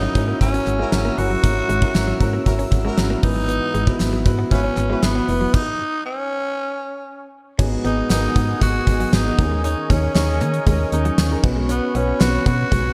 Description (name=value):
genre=1980s-style pop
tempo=117 BPM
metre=4/4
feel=straight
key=G# minor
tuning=A4 = 440 Hz
part: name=growling tenor saxophone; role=melody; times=0.0-12.9 s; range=B3 to F#4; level=-27 LUFS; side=equal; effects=none
part: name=warm grand piano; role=accompaniment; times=0.0-12.9 s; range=G#2 to C#5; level=-27 LUFS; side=equal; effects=none
part: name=sweeping resonant pad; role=sustained chords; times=0.0-12.9 s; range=B3 to E6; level=-35 LUFS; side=equal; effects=chorus
part: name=direct-recorded clean electric guitar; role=riff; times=0.0-12.9 s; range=F#3 to C#4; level=-32 LUFS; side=equal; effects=lush chorus
part: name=solid FM bass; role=bass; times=0.0-12.9 s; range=E#1 to D#3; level=-24 LUFS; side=equal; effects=none
part: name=gated 80s drum kit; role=drums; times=0.2-12.8 s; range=crash cymbal, hi-hat, kick drum, snare drum, tambourine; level=-23 LUFS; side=equal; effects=none
part: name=clear horn section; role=stabs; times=0.4-5.3 s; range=E4 to B4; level=-35 LUFS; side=equal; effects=none
part: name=group handclap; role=percussion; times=0.7-12.3 s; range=none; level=barely audible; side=none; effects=none
room=light reverb, small room ambience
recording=dark, warm production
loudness=-19 LUFS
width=mono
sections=0.0-7.6 A section; 7.6-12.9 B section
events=stop 5.5-7.6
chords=0.0 F#7; 3.2 Esus2/G#; 5.5 N.C.; 7.6 G#m7; 9.4 D#7sus4; 11.4 Bsus2